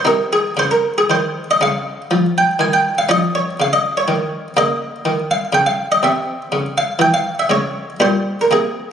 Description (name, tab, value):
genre	classical, baroque-style suite movement for harpsichord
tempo	109-128 BPM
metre	3/4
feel	rubato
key	unclear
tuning	A4 = 440 Hz
part	buff-stop harpsichord	solo	0.0-8.9 s	Bb2 to Ab5	-14 LUFS	equal	none
room	wet recital hall reverb, RT60 1.8 s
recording	recorded on a phone in the room, studio ambience, compression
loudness	-14 LUFS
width	side -8 dB against mid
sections	0.0-8.9 A section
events	none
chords	0.1 Bbm11/C; 1.6 Db; 4.6 Bbm/Db; 6.0 C; 7.5 Db5; 8.0 Gmadd11/Bb